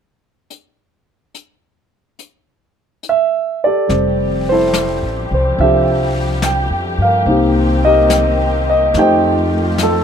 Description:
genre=jazz ballad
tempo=71 BPM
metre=4/4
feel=swing 66% on 8ths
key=F major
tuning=A4 = 441 Hz
part: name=jazz brush drum kit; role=drums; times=0.5-10.0 s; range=brushed snare drum, hi-hat, snare drum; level=-25 LUFS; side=left 4 dB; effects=none
part: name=dark concert grand piano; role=accompaniment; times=3.1-10.0 s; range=F3 to G5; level=-14 LUFS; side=right 1 dB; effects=none
part: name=muted symphonic string section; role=sustained chords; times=3.9-10.0 s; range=Eb3 to G4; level=-23 LUFS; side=left 1 dB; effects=none
part: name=upright bass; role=bass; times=3.9-10.0 s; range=F1 to G2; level=-18 LUFS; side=left 1 dB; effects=none
room=light reverb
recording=none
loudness=-12 LUFS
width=side -7 dB against mid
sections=0.5-3.9 A section; 3.9-10.0 B section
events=none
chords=0.5 Gsus2; 3.9 Fmaj9; 7.3 Cm7; 8.9 F9

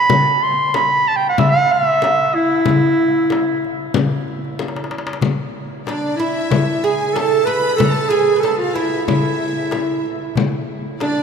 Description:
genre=Arabic maqam ensemble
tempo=93 BPM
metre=4/4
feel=straight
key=E maqam bayati, E maqam hijaz from 5.2 s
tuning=A4 = 440 Hz
part: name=warm clarinet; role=melody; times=0.0-11.2 s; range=D4 to C6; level=-17 LUFS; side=right 1 dB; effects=none
part: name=darbuka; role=percussion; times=0.1-11.2 s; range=none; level=-24 LUFS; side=left 2 dB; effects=none
part: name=frame drum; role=percussion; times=0.1-11.2 s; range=none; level=-24 LUFS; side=left 6 dB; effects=none
part: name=clear studio violin section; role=second line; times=5.9-11.2 s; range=D5 to B5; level=-26 LUFS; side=left 2 dB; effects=none
part: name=oud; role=second line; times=5.9-11.2 s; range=D4 to B4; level=-21 LUFS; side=right 5 dB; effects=none
room=wet cathedral reverb, RT60 5.8 s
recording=in a vast, echoing space, faint mains hum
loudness=-15 LUFS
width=side -6 dB against mid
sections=0.0-5.2 A section; 5.2-11.2 B section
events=drum fill 4.6-5.2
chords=none

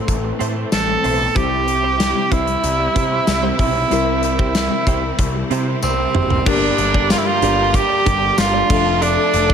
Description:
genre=1980s-style pop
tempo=94 BPM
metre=4/4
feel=straight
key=unclear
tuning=A4 = 440 Hz
part: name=bright tenor saxophone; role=melody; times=0.0-9.5 s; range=C4 to A4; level=-18 LUFS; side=right 3 dB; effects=ping-pong delay
part: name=FM electric piano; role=accompaniment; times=0.0-9.5 s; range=G2 to Bb4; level=-25 LUFS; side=left 8 dB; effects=chorus
part: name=bright studio string section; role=sustained chords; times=0.0-9.5 s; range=E3 to D6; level=-27 LUFS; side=left 1 dB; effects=none
part: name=direct-recorded clean electric guitar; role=riff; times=0.1-9.5 s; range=C4 to D5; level=-27 LUFS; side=right 8 dB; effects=ensemble chorus
part: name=fuzz picked electric bass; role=bass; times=0.1-9.5 s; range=F1 to C3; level=-23 LUFS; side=equal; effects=overdrive
part: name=big rock drum kit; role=drums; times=0.1-9.5 s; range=crash cymbal, hi-hat, kick drum, snare drum, tambourine, toms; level=-21 LUFS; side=equal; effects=none
part: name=tambourine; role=percussion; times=0.7-8.5 s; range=none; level=-33 LUFS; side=left 5 dB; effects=none
part: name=raw garage guitar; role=accompaniment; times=6.5-9.5 s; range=G2 to D4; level=-28 LUFS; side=left 2 dB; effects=none
room=moderate lush hall reverb, RT60 1.7 s, small room reverb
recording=none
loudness=-15 LUFS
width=side -7 dB against mid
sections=0.0-6.5 A section; 6.5-9.5 B section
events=drum fill 5.8-6.5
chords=0.0 Am; 1.4 C; 6.5 Gm; 8.7 Dm/F

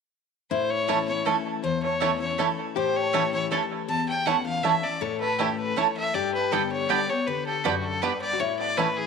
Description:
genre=bluegrass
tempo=160 BPM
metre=3/4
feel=straight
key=A mixolydian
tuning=A4 = 442 Hz
part: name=clear fiddle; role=melody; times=0.5-9.1 s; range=F#4 to A5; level=-27 LUFS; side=left 2 dB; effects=none
part: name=lap resonator guitar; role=second line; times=0.5-9.1 s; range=E4 to A4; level=-32 LUFS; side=left 11 dB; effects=none
part: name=picked steel-string acoustic guitar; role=accompaniment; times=0.5-9.1 s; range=E2 to G4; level=-31 LUFS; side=left 9 dB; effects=none
part: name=bluegrass banjo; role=melody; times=0.9-8.9 s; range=A3 to G4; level=-32 LUFS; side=right 5 dB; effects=tape echo
part: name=mandolin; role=stabs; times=0.9-8.9 s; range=A3 to A5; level=-29 LUFS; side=right 12 dB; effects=tape echo
room=wet spring reverb, RT60 2.1 s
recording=1960s-style stereo with parts hard left and right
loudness=-23 LUFS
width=side -5 dB against mid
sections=0.5-9.1 A section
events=none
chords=0.5 A; 6.1 G; 8.4 A

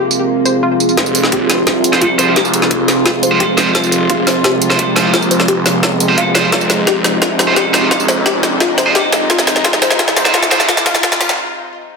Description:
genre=dark technical drum and bass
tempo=173 BPM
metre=4/4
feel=straight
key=F minor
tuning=A4 = 440 Hz
part: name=dark chamber string section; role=sustained chords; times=0.0-12.0 s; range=C3 to F4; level=-20 LUFS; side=equal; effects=sidechain pumping
part: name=deep dark ambient pad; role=texture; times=0.0-11.4 s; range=C4 to F5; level=-19 LUFS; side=right 1 dB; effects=chorus, built-in reverb, sidechain pumping
part: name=drum and bass drum kit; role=drums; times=0.1-11.4 s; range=hi-hat, snare drum, tambourine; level=-14 LUFS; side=equal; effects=overdrive, high-pass filter on perc, low-pass filter on perc, studio reverb, high-pass filter on snare, low-pass filter on snare, high-pass filter on hats, low-pass filter on hats
part: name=analog pluck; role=arpeggios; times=0.5-11.3 s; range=F4 to F5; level=-20 LUFS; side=left 3 dB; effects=chorus, sidechain pumping, digital delay
part: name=phased detuned saw bass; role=bass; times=1.0-11.4 s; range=Eb1 to C2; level=-21 LUFS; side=left 1 dB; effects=phaser, tube saturation, sidechain pumping, high-pass filter
part: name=electronic kick drum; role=drums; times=1.0-11.1 s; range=none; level=-25 LUFS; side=left 1 dB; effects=none
part: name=riser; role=sound effects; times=4.1-11.4 s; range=none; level=-24 LUFS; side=equal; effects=none
part: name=heavy high-gain guitar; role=stabs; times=1.9-10.6 s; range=Ab3 to C5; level=-17 LUFS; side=right 4 dB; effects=distortion, low-pass filter, digital delay
room=moderate digital room reverb, RT60 1.1 s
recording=dense, heavily limited modern master, high-pass filter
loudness=-10 LUFS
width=side -4 dB against mid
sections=1.0-12.0 A section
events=build-up 1.0-12.0; drum fill 1.0-11.4; filter sweep on synth arpeggio sound 1.0-12.0; riser 4.1-11.4; break 11.4-12.0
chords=0.0 Fm

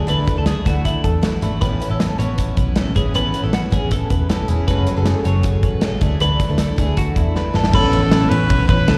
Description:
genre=jangly indie pop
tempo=157 BPM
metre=4/4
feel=straight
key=A major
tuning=A4 = 441 Hz
part: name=picked twelve-string acoustic guitar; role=accompaniment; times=0.0-9.0 s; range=F#2 to G#4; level=-27 LUFS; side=equal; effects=slapback echo
part: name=twelve-string electric guitar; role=arpeggios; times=0.0-9.0 s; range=E4 to C#5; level=-27 LUFS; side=equal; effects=phaser, slapback echo
part: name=vintage muted picked electric bass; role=bass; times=0.0-9.0 s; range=E1 to E2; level=-22 LUFS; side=equal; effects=none
part: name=modern studio drum kit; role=drums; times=0.1-9.0 s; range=crash cymbal, hi-hat, kick drum, ride cymbal, snare drum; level=-22 LUFS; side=equal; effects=none
part: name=clear trumpet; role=melody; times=7.7-9.0 s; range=A4 to B4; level=-23 LUFS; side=equal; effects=slapback echo
part: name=vibraphone with medium mallets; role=second line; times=7.7-9.0 s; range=C#4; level=-25 LUFS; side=equal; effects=none
room=studio reverb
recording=live gig heard through the venue's PA, recital hall reverb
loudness=-18 LUFS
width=mono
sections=0.0-7.7 A section; 7.7-9.0 B section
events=drum fill 7.4-7.7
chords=0.0 Dsus2; 1.6 Aadd9; 4.7 F#madd9; 6.0 Dsus2; 7.7 Aadd9

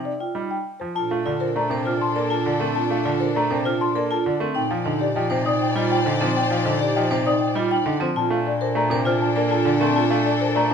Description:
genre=classical, minimalist pattern music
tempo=100 BPM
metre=3/4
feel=straight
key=Bb major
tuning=A4 = 440 Hz
part: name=folk marimba with medium mallets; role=melody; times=0.0-10.7 s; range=Bb4 to A5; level=-26 LUFS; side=left 5 dB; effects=none
part: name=bright baby grand piano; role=accompaniment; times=0.0-10.7 s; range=C3 to Bb3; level=-27 LUFS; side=right 2 dB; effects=none
part: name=vibraphone with hard mallets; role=arpeggios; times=0.0-10.7 s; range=C4 to C5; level=-26 LUFS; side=right 5 dB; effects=none
part: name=mellow French horn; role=second line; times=1.0-10.7 s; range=D4 to Eb4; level=-28 LUFS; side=right 3 dB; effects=none
part: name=rich symphonic string section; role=sustained chords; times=1.0-10.7 s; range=D4 to D5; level=-29 LUFS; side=left 3 dB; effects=none
part: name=warm bass clarinet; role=bass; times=1.0-10.7 s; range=Bb2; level=-28 LUFS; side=left 3 dB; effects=none
part: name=worn celesta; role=arpeggios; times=1.6-10.7 s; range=G5 to F6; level=-26 LUFS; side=left 1 dB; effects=none
room=moderate large studio reverb, RT60 1.2 s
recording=minimal, uncompressed stereo recording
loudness=-19 LUFS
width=side -7 dB against mid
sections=1.0-10.7 A section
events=none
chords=0.0 Cmadd9; 1.0 Bbmaj7; 4.6 Cmadd9/Bb; 8.2 Bbmaj7

